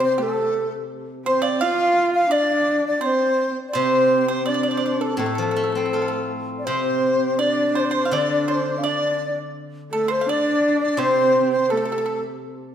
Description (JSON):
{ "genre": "chinese traditional, Chinese chamber ensemble", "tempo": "84 BPM", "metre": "4/4", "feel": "rubato", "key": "D yu mode", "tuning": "A4 = 440 Hz", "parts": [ { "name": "breathy bright xiao", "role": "melody", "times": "0.0-12.2 s", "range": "A4 to F5", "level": "-22 LUFS", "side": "equal", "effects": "none" }, { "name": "dark horsehead fiddle", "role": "second line", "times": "0.0-12.2 s", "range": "A3 to F4", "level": "-25 LUFS", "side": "right 2 dB", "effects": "none" }, { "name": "mellow hollow dizi", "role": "second line", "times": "0.0-12.2 s", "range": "A4 to F5", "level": "-28 LUFS", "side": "left 2 dB", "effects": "none" }, { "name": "pipa", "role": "second line", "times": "0.0-12.1 s", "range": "A4 to F5", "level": "-28 LUFS", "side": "right 4 dB", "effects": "none" }, { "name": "steel-string zither", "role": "accompaniment", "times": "0.0-12.7 s", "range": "A2 to F4", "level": "-26 LUFS", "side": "left 2 dB", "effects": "none" } ], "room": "wet recital hall reverb, RT60 1.7 s", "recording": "none", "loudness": "-18 LUFS", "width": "side -9 dB against mid", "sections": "0.0-12.7 A section", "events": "none", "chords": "none" }